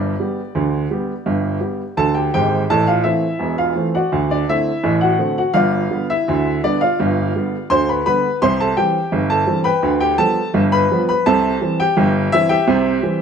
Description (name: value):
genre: ragtime piano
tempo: 84 BPM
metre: 2/4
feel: straight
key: unclear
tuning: A4 = 442 Hz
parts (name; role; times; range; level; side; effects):
- warm upright piano; solo; 0.0-13.2 s; E1 to C6; -15 LUFS; equal; none
room: wet stone room reverb, RT60 1.3 s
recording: band playing live in one room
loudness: -15 LUFS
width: side -7 dB against mid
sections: 0.0-2.7 A section; 2.7-13.2 A section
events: none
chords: 0.0 G; 2.7 Am; 4.1 D7; 5.6 G7; 8.4 C; 9.8 G7/D; 11.2 C